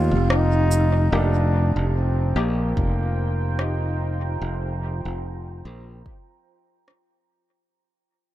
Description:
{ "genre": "ambient dub", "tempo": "73 BPM", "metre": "4/4", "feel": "swing 55% on 16ths", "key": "F mixolydian", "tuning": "A4 = 441 Hz", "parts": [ { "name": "mellow trombone", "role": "melody", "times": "0.0-4.4 s", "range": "Bb3 to F4", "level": "-27 LUFS", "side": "equal", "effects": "dub echo" }, { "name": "deep dark ambient pad", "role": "sustained chords", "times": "0.0-7.7 s", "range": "F4 to Bb5", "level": "-34 LUFS", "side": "right 3 dB", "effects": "chorus, built-in reverb" }, { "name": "buzzing kalimba", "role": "arpeggios", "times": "0.0-1.2 s", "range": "A3", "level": "-37 LUFS", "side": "left 1 dB", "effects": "none" }, { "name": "modern bright fingered electric bass", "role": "bass", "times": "0.0-6.0 s", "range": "F1 to Eb2", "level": "-21 LUFS", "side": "equal", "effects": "tube saturation" }, { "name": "electronic rim click and cabasa", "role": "drums", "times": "0.3-7.1 s", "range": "none", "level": "-31 LUFS", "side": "equal", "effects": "overdrive, dub echo" }, { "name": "filtered dub chord stab", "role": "stabs", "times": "1.1-2.6 s", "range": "Bb3 to G4", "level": "-34 LUFS", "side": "left 3 dB", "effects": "none" }, { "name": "electronic kick drum", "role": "drums", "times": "2.8-6.2 s", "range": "none", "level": "-26 LUFS", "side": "equal", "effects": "none" } ], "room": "digital ambience", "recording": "none", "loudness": "-20 LUFS", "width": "side -14 dB against mid", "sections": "0.0-1.1 A section; 1.1-7.7 B section", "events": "break 0.0-1.1; fade-out 1.1-7.7", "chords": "0.0 F7sus2; 1.1 F9sus4" }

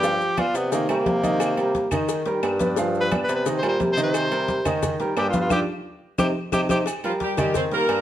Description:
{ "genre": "latin, salsa", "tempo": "176 BPM", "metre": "4/4", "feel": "straight", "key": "C minor", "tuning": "A4 = 440 Hz", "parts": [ { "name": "breathy tenor saxophone", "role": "melody", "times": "0.0-6.8 s", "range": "Bb3 to C5", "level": "-25 LUFS", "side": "equal", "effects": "none" }, { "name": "bright baby grand piano", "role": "accompaniment", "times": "0.0-8.0 s", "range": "Eb3 to F5", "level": "-25 LUFS", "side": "right 2 dB", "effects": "none" }, { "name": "mellow bassoon", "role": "bass", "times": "0.0-8.0 s", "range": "G2 to Eb3", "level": "-27 LUFS", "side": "left 1 dB", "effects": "none" }, { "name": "agogo bells and timbales", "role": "percussion", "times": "0.0-8.0 s", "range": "none", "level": "-32 LUFS", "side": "right 4 dB", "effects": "none" }, { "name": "congas", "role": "percussion", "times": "0.0-8.0 s", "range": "none", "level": "-29 LUFS", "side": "left 1 dB", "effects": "none" }, { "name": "cowbell", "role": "percussion", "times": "0.0-8.0 s", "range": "none", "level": "-33 LUFS", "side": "left 9 dB", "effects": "none" }, { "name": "maracas", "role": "percussion", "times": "0.0-8.0 s", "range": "none", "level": "-41 LUFS", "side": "left 8 dB", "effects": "none" }, { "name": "claves", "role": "percussion", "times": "0.4-8.0 s", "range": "none", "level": "-37 LUFS", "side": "left 6 dB", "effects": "none" }, { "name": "clear horn section", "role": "melody", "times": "7.0-8.0 s", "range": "F3 to C5", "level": "-24 LUFS", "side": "equal", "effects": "none" } ], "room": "moderate large studio reverb, RT60 1.1 s", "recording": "dark, warm production", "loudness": "-20 LUFS", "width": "side -12 dB against mid", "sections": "0.0-6.9 A section; 6.9-8.0 B section", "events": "tenor saxophone solo 0.0-6.9; band accent 5.5-6.9; drum fill 6.0-6.9", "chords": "0.0 G7; 0.7 Cm7; 2.1 Ebmaj7; 2.8 G7; 3.5 Cm7; 4.8 Ebmaj7; 5.5 G5; 6.2 Cm; 6.9 Ebadd9" }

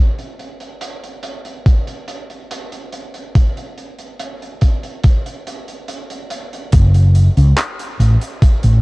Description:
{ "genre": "vaporwave", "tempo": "71 BPM", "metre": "4/4", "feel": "straight", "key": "F# minor", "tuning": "A4 = 440 Hz", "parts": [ { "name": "big rock drum kit", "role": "drums", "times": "0.2-8.8 s", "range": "handclaps, hi-hat", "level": "-28 LUFS", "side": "right 1 dB", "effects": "low-pass filter on hats, low-pass filter on snare, low-pass filter on room" }, { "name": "electronic kick drum", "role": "drums", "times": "1.7-8.6 s", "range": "none", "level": "-11 LUFS", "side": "equal", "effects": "overdrive" }, { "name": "mellow fretless electric bass", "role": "bass", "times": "6.7-8.8 s", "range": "F#1 to C#2", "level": "-10 LUFS", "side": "equal", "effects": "none" } ], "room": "little or no reverb", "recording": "dark, warm production, cassette tape, faint mains hum", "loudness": "-12 LUFS", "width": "side -24 dB against mid", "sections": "0.0-6.7 A section; 6.7-8.8 B section", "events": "none", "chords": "none" }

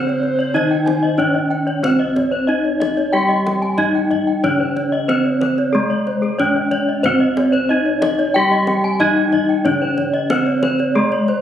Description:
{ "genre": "Balinese gamelan", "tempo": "92 BPM", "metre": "4/4", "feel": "straight", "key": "C pelog", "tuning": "A4 = 441 Hz", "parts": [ { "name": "gamelan-type bronze metallophone", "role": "melody", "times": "0.0-11.4 s", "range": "Ab3 to G4", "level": "-17 LUFS", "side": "left 1 dB", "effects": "none" }, { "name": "mellow reedy alto recorder", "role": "second line", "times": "0.0-1.4 s", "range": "C5", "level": "-26 LUFS", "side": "equal", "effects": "none" }, { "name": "gamelan-type bronze metallophone", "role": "accompaniment", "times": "0.0-11.4 s", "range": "C3 to Ab3", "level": "-25 LUFS", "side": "equal", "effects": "none" }, { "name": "gamelan-type bronze metallophone", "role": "arpeggios", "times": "0.0-11.3 s", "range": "Ab4 to Ab5", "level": "-22 LUFS", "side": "left 3 dB", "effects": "none" }, { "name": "gamelan-type bossed gongs", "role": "bass", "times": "0.0-11.4 s", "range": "C2 to Db4+35c", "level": "-26 LUFS", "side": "equal", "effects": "none" }, { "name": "gamelan-type bronze metallophone", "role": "arpeggios", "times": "0.1-11.4 s", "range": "C5 to Ab5", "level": "-26 LUFS", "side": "right 3 dB", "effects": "none" }, { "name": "kendang", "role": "percussion", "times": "0.1-11.4 s", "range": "none", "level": "-29 LUFS", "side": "equal", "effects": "none" } ], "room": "moderate scoring stage reverb, RT60 1.5 s", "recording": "recorded on a phone in the room, club reverb, compression", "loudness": "-15 LUFS", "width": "side -10 dB against mid", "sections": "0.0-1.8 A section; 1.8-11.4 B section", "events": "none", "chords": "none" }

